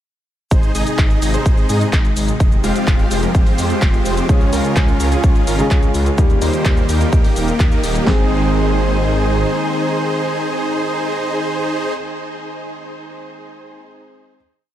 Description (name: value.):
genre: EDM, festival progressive house.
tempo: 127 BPM.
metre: 4/4.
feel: straight.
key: Ab major.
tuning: A4 = 440 Hz.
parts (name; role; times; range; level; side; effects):
lush unison pad; sustained chords; 0.5-11.9 s; C3 to Ab4; -24 LUFS; equal; chorus, sidechain pumping.
big supersaw lead; riff; 0.5-11.9 s; Ab3 to F5; -22 LUFS; right 1 dB; sidechain pumping, tape echo.
wide detuned saw bass; bass; 0.5-9.4 s; Eb1 to Ab2; -20 LUFS; equal; chorus, sidechain pumping.
big-room dance drum kit; drums; 0.5-8.2 s; handclaps, kick drum, snare drum; -14 LUFS; equal; none.
big-room dance drum kit; drums; 0.5-8.0 s; handclaps, hi-hat, shaker; -27 LUFS; left 1 dB; none.
warm concert grand piano; accompaniment; 4.3-14.4 s; Db3 to Ab4; -24 LUFS; equal; lush chorus, sidechain pumping, tape echo.
room: light reverb, digital ambience.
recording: none.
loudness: -14 LUFS.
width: side -12 dB against mid.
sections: 0.5-8.1 drop; 8.1-11.9 final chord.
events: drop 0.5-8.1; band accent 7.6.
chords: 0.5 Ab; 2.4 Fmadd9; 4.3 Db; 6.2 Eb; 8.1 Ab.